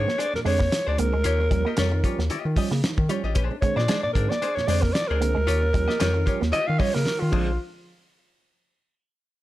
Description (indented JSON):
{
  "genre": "funk",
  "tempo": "114 BPM",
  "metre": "4/4",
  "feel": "swing 56% on 16ths",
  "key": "Bb mixolydian",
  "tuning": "A4 = 441 Hz",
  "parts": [
    { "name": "breathy alto saxophone", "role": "melody", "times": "0.0-7.6 s", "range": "F4 to F5", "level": "-26 LUFS", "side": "equal", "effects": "slapback echo" },
    { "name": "archtop guitar, miked and amplified", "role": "accompaniment", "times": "0.0-7.5 s", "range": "D4 to Eb5", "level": "-32 LUFS", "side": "left 6 dB", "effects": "none" },
    { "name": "mellow tonewheel organ", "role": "stabs", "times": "0.0-7.5 s", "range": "Bb2 to Db4", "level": "-33 LUFS", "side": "right 3 dB", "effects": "chorus vibrato, slow rotary speaker" },
    { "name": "round analog bass", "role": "bass", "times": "0.0-7.6 s", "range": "A1 to Eb3", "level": "-25 LUFS", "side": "equal", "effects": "none" },
    { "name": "electric guitar with an envelope filter", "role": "riff", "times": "0.1-7.5 s", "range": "F3 to Bb3", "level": "-31 LUFS", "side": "right 7 dB", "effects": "none" },
    { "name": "cloth-damped thuddy drum kit", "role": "drums", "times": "0.1-7.5 s", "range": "crash cymbal, hi-hat, kick drum, snare drum", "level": "-26 LUFS", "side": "equal", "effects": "none" }
  ],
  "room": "light reverb, small room ambience",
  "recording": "none",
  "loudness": "-21 LUFS",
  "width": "side -15 dB against mid",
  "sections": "0.0-7.6 A section; 7.6-9.4 B section",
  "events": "alto saxophone solo 0.0-7.6; drum fill 7.1-7.6",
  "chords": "0.0 Bb9; 1.2 Eb9; 3.4 Bb9; 5.5 Eb9; 7.3 Bb9; 7.6 N.C."
}